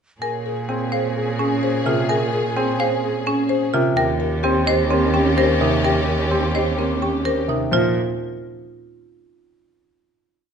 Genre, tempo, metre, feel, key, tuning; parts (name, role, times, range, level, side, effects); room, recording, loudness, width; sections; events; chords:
classical, minimalist pattern music; 128 BPM; 4/4; straight; Bb dorian; A4 = 442 Hz
buzzing marimba with medium mallets; melody; 0.2-7.9 s; G4 to Ab5; -26 LUFS; left 11 dB
mellow hollow alto flute; second line; 0.2-7.4 s; G4 to Ab4; -27 LUFS; left 1 dB
rich symphonic string section; sustained chords; 0.2-7.4 s; Db4 to Ab4; -27 LUFS; left 2 dB
marimba with hard mallets; arpeggios; 0.2-7.9 s; C4 to C5; -23 LUFS; right 5 dB
rich cello; bass; 0.2-7.9 s; Eb2 to Bb2; -24 LUFS; right 2 dB
clear concert grand piano; accompaniment; 0.7-7.9 s; C3 to C4; -26 LUFS; left 1 dB
moderate recital hall reverb, RT60 1.4 s; nothing above 10.9 kHz; -18 LUFS; side -7 dB against mid
0.2-7.7 A section; 7.7-9.6 final chord
0.2 Bbm7; 4.0 Eb7; 7.7 Bb5